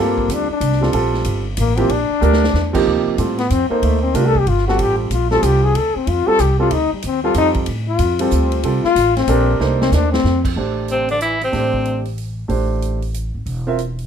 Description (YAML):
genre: modal jazz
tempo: 187 BPM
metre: 3/4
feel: swing 64% on 8ths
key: D phrygian, A minor from 10.6 s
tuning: A4 = 442 Hz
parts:
  - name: bright trombone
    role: second line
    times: 0.0-12.0 s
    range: C3 to A4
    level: -18 LUFS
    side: left 6 dB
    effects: none
  - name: warm grand piano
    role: accompaniment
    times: 0.0-13.8 s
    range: C3 to E5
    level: -20 LUFS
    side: right 5 dB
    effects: none
  - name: upright bass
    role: bass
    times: 0.0-14.1 s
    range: E1 to A2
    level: -19 LUFS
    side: right 1 dB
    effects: none
  - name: swinging big-band drum kit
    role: drums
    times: 0.2-14.0 s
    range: crash cymbal, hi-hat, kick drum, ride cymbal, snare drum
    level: -28 LUFS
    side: right 1 dB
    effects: none
  - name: warm tenor saxophone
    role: melody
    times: 10.9-12.0 s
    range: C4 to E4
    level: -18 LUFS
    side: equal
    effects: none
room: light reverb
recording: minimal, uncompressed stereo recording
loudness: -15 LUFS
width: side -8 dB against mid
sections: 0.0-2.9 A section; 2.9-10.6 A section; 10.6-14.1 B section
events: trombone solo 0.0-10.6; drum fill 2.2-2.5, 9.6-10.2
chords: 0.0 Gm7; 2.9 Dm7; 6.7 Fadd9/D; 10.6 Am7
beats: 0.29 0.61 | 0.94 1.26 1.58 | 1.90 2.22 2.54 | 2.86 3.18 3.50 | 3.83 4.15 4.47 | 4.79 5.11 5.43 | 5.75 6.07 6.39 | 6.71 7.04 7.36 | 7.68 8.00 8.32 | 8.64 8.96 9.28 | 9.60 9.92 10.24 | 10.56 10.89 11.21 | 11.53 11.85 12.17 | 12.49 12.82 13.14 | 13.46 13.78